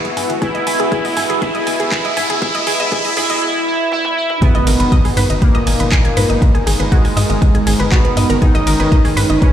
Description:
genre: melodic techno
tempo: 120 BPM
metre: 4/4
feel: straight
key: G# minor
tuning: A4 = 441 Hz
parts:
  - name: resonant sweep polysynth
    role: melody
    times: 0.0-9.5 s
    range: G#3 to E4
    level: -18 LUFS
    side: right 1 dB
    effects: chorus, sidechain pumping, ping-pong delay
  - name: lush unison pad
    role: sustained chords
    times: 0.0-9.5 s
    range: D#3 to A#4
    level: -27 LUFS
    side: equal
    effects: chorus, sidechain pumping
  - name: wide unison pluck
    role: arpeggios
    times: 0.0-9.5 s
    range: F#4 to G#6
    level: -22 LUFS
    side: equal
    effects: sidechain pumping, ping-pong delay
  - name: tight sequencer bass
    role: bass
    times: 0.0-9.4 s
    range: G#1 to G#2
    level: -18 LUFS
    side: equal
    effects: sidechain pumping
  - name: house drum kit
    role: drums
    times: 0.0-9.5 s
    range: handclaps, hi-hat, ride cymbal, toms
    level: -24 LUFS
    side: right 1 dB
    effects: high-pass filter on hats, high-pass filter on snare, high-pass filter on toms, high-pass filter on cymbals
  - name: riser and impact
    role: sound effects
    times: 0.0-6.4 s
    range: none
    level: -24 LUFS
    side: equal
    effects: none
  - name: warbly tape-like pad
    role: texture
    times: 0.0-3.4 s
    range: E4 to F#5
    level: -27 LUFS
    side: left 4 dB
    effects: chorus, built-in reverb, sidechain pumping
  - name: electronic kick drum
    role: drums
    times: 0.4-9.5 s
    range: none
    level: -14 LUFS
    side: equal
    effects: none
  - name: soft supersaw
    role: second line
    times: 4.4-9.5 s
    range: G#2 to D#3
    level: -23 LUFS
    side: equal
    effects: cassette tape, sidechain pumping, ping-pong delay
room: light reverb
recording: played on a big sound system in a bare room, stone room reverb, high-pass filter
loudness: -12 LUFS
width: side -10 dB against mid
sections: 0.0-4.4 A section; 4.4-9.5 B section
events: build-up 0.0-4.4; riser 0.0-3.4; filter sweep on synth arpeggio sound 0.0-4.4; filter sweep 0.0-4.4; drum fill 3.9-4.4; drop 4.4-9.5; impact 4.4-6.4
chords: 0.0 Eadd9/G#; 4.4 G#madd9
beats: | 0.42 0.92 1.42 1.92 | 2.42 2.92 3.42 3.92 | 4.42 4.92 5.42 5.92 | 6.42 6.92 7.42 7.92 | 8.42 8.92 9.42

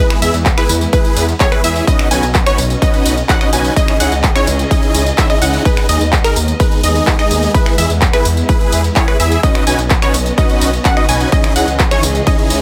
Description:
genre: EDM, festival progressive house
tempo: 127 BPM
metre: 4/4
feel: straight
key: unclear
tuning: A4 = 439 Hz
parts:
  - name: warm studio string section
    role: sustained chords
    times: 0.0-12.6 s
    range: C#3 to D#5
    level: -25 LUFS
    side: equal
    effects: sidechain pumping
  - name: unison pluck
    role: arpeggios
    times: 0.0-12.6 s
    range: A#4 to G#5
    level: -22 LUFS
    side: equal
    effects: sidechain pumping, digital delay
  - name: dense compressed supersaw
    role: riff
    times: 0.0-12.6 s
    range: C#4 to G#5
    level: -20 LUFS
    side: equal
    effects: sidechain pumping, digital delay
  - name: big-room dance drum kit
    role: drums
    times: 0.1-12.6 s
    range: finger snaps, handclaps, hi-hat, ride cymbal, tambourine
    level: -22 LUFS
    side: equal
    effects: none
  - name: detuned saw bass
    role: bass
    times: 0.2-12.6 s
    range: B1 to E2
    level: -19 LUFS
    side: equal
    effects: chorus, sidechain pumping
  - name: electronic kick drum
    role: drums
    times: 0.5-12.4 s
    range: none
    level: -16 LUFS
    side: equal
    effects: overdrive
room: little or no reverb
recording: none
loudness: -13 LUFS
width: mono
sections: 0.0-12.6 A section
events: none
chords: 0.0 E; 1.9 Badd9; 3.8 C#madd9; 5.7 G#m/D#; 7.5 E; 9.4 Badd9; 11.3 C#madd9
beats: 0.46 0.93 1.40 | 1.88 2.35 2.82 3.29 | 3.77 4.24 4.71 5.18 | 5.66 6.13 6.60 7.07 | 7.54 8.02 8.49 8.96 | 9.43 9.91 10.38 10.85 | 11.32 11.80 12.27

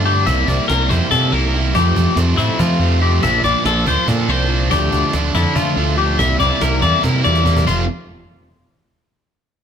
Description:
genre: math rock and midwest emo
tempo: 284 BPM (eighths)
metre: 7/8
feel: straight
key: F major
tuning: A4 = 435 Hz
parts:
  - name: twangy electric guitar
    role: arpeggios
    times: 0.0-7.9 s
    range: E4 to E5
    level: -19 LUFS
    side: left 6 dB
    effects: phaser
  - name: crunchy overdriven guitar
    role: riff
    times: 0.0-7.8 s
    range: F2 to F4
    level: -19 LUFS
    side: right 3 dB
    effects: none
  - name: growling fingered electric bass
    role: bass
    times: 0.0-7.9 s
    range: F1 to F3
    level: -18 LUFS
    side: equal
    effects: overdrive
  - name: cajon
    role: drums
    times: 0.1-7.8 s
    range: none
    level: -26 LUFS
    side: equal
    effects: none
room: light reverb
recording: band playing live in one room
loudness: -14 LUFS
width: side -8 dB against mid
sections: 0.0-7.7 A section; 7.7-9.1 B section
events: drum fill 7.0-7.7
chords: 0.3 C7(no3); 1.7 Fadd9; 3.2 Bbmaj9; 4.7 Dmadd9; 6.2 C9; 7.7 F5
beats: 0.05 | 0.26 0.47 0.68 0.90 1.11 1.32 1.53 | 1.74 1.96 2.17 2.38 2.59 2.80 3.01 | 3.23 3.44 3.65 3.86 4.07 4.28 4.50 | 4.71 4.92 5.13 5.34 5.55 5.76 5.98 | 6.19 6.40 6.61 6.82 7.04 7.25 7.46 | 7.67

